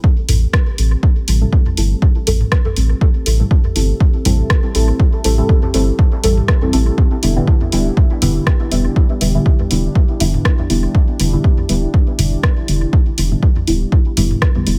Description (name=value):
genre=dub techno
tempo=121 BPM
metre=4/4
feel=swing 55% on 16ths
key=A minor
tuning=A4 = 441 Hz
part: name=deep dark ambient pad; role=sustained chords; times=0.0-14.8 s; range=C4 to A4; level=-31 LUFS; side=equal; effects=chorus, built-in reverb, sidechain pumping
part: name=electronic kick drum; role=drums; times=0.0-14.5 s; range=none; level=-15 LUFS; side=equal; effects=none
part: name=deep mellow chord stab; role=stabs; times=0.3-14.8 s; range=D3 to A4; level=-22 LUFS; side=equal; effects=chorus, phaser, sidechain pumping, dub echo
part: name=soft dub sub bass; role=bass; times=0.3-14.8 s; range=D1 to A1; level=-18 LUFS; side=equal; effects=sidechain pumping
part: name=deep house drum kit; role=drums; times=0.3-14.8 s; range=hi-hat, rim click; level=-25 LUFS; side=equal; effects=none
part: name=electronic toms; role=percussion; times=0.3-14.6 s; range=none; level=-25 LUFS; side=equal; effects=sidechain pumping on toms
room=digital ambience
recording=none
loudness=-15 LUFS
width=mono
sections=0.0-14.8 A section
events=none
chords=0.0 Am7; 7.0 Em7